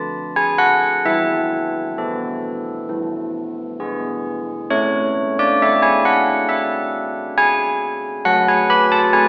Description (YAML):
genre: classical, tune for church bells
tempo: 67 BPM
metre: 4/4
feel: straight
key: unclear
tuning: A4 = 439 Hz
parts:
  - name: carillon bells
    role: solo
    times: 0.0-9.3 s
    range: D3 to B5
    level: -15 LUFS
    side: equal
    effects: none
room: wet concert hall reverb, RT60 1.9 s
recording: heard from further back in the room, AM radio sound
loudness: -15 LUFS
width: side -26 dB against mid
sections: 0.0-9.3 A section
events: none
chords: 0.0 D; 1.0 Esus4; 2.9 E; 4.7 N.C.; 8.2 D/F#